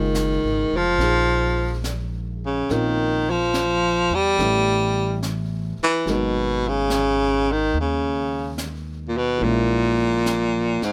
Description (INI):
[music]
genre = jazz ballad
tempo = 71 BPM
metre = 4/4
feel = swing 68% on 8ths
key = G# dorian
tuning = A4 = 439 Hz
[part]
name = bright baritone saxophone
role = melody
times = 0.0-10.9 s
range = G#2 to G3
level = -22 LUFS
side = equal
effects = none
[part]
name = dark upright piano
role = accompaniment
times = 0.0-10.9 s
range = C#3 to G#4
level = -33 LUFS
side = equal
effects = none
[part]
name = upright bass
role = bass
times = 0.0-10.9 s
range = E#1 to E2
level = -29 LUFS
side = equal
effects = none
[part]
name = jazz brush drum kit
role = drums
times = 0.1-10.9 s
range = brushed snare drum, hi-hat, snare drum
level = -36 LUFS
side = equal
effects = none
[sound]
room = light reverb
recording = none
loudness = -22 LUFS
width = mono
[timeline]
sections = 0.0-10.9 A section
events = none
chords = 0.0 F#maj9; 2.7 A#m; 4.4 A9; 6.1 G#m7; 9.4 A#m7b5